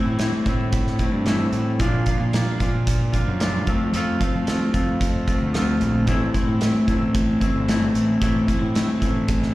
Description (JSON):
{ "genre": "indie rock", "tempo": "112 BPM", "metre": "4/4", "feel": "straight", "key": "A phrygian", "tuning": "A4 = 440 Hz", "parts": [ { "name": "clean electric guitar", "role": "riff", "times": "0.0-9.5 s", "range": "F2 to F4", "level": "-37 LUFS", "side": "right 8 dB", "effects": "ensemble chorus, analog delay, slapback echo" }, { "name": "raw garage guitar", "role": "riff", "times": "0.0-9.5 s", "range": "A2 to F4", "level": "-22 LUFS", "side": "left 1 dB", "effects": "overdrive" }, { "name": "fuzz fingered electric bass", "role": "bass", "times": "0.1-9.5 s", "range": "G1 to F3", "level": "-25 LUFS", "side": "right 1 dB", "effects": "overdrive" }, { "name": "loose indie drum kit", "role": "drums", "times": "0.2-9.5 s", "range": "hi-hat, kick drum, snare drum", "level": "-24 LUFS", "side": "equal", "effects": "none" } ], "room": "little or no reverb", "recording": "live gig heard through the venue's PA, recital hall reverb", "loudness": "-19 LUFS", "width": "side -17 dB against mid", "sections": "0.0-9.5 A section", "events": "none", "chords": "0.0 Am; 1.8 Bbadd9; 3.7 F; 6.1 Am" }